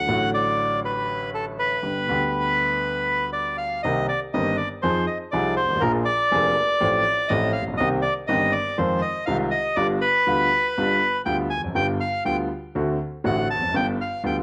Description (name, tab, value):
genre	tango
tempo	121 BPM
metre	4/4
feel	rubato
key	C minor from 3.8 s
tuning	A4 = 440 Hz
part	bandoneon	melody	0.0-14.4 s	A4 to A5	-25 LUFS	equal	cassette tape
part	warm grand piano	accompaniment	0.0-14.4 s	F1 to Ab4	-27 LUFS	equal	cassette tape
room	wet spring reverb, RT60 1.1 s, small room ambience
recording	home recording on cassette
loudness	-23 LUFS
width	mono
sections	0.0-3.8 A section; 3.8-14.4 B section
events	none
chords	0.0 D; 1.8 G; 3.8 Cm7; 4.8 Fm7; 5.8 Bb7; 6.8 Fadd9/A; 7.8 Cm7; 8.8 Fm7; 9.8 G7; 12.8 D7; 13.7 G7